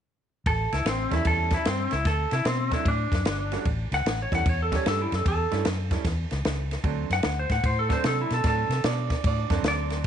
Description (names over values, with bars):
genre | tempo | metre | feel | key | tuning
electric blues shuffle | 150 BPM | 4/4 | swing 65% on 8ths | unclear | A4 = 439 Hz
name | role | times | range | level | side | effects
clean lap steel guitar | melody | 0.5-10.0 s | C4 to F#5 | -27 LUFS | equal | none
vintage muted fingered electric bass | bass | 0.5-10.1 s | G1 to C3 | -28 LUFS | equal | none
compact cocktail drum kit | drums | 0.5-10.1 s | kick drum, ride cymbal, snare drum | -28 LUFS | equal | none
bright upright piano | accompaniment | 1.1-10.0 s | F#3 to G4 | -34 LUFS | right 13 dB | none
growling tenor saxophone | second line | 8.8-9.6 s | D4 | -32 LUFS | right 11 dB | none
room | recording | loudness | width
light reverb, small room ambience | 1960s-style stereo, nothing above 10.7 kHz | -23 LUFS | side -9 dB against mid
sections
0.5-10.1 A section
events
none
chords
0.5 A7; 2.1 D7; 3.7 A7; 6.8 D7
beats
| 0.46 0.86 1.26 1.66 | 2.06 2.46 2.86 3.25 | 3.65 4.05 4.45 4.85 | 5.25 5.65 6.04 6.44 | 6.84 7.24 7.64 8.04 | 8.44 8.84 9.24 9.64 | 10.04